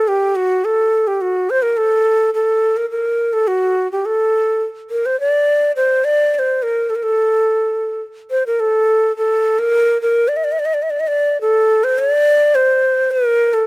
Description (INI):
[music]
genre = persian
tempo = 106 BPM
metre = 3/4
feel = straight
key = unclear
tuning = A4 = 440 Hz
[part]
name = breathy ney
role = solo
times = 0.0-13.7 s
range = F#4 to E5-48c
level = -14 LUFS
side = equal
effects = slapback echo
[sound]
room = light reverb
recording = recorded outdoors, with no room sound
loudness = -14 LUFS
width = side -25 dB against mid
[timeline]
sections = 0.0-12.0 A section; 12.0-13.7 B section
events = none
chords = none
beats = | 0.08 0.64 1.21 | 1.78 2.35 2.91 | 3.48 4.05 4.62 | 5.18 5.75 6.32 | 6.88 7.45 8.02 | 8.58 9.15 9.72 | 10.28 10.85 11.42 | 11.98 12.55 13.12